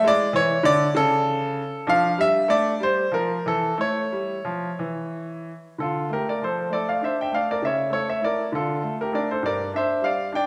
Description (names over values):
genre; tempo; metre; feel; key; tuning
classical, baroque-style suite movement for grand piano; 60-67 BPM (dotted quarters); 6/8; rubato; D minor; A4 = 440 Hz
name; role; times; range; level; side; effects
clear baby grand piano; solo; 0.0-10.5 s; G2 to G5; -23 LUFS; equal; none
room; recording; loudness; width
wet recital hall reverb, RT60 1.7 s; none; -23 LUFS; mono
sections
0.0-5.8 A section; 5.8-10.5 A section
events
none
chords
0.1 E7; 1.0 N.C.; 1.9 Dm/F; 2.8 Fmaj9; 3.8 A (rootless); 5.8 Dm; 7.6 A/C#; 8.5 Dm; 9.4 Gm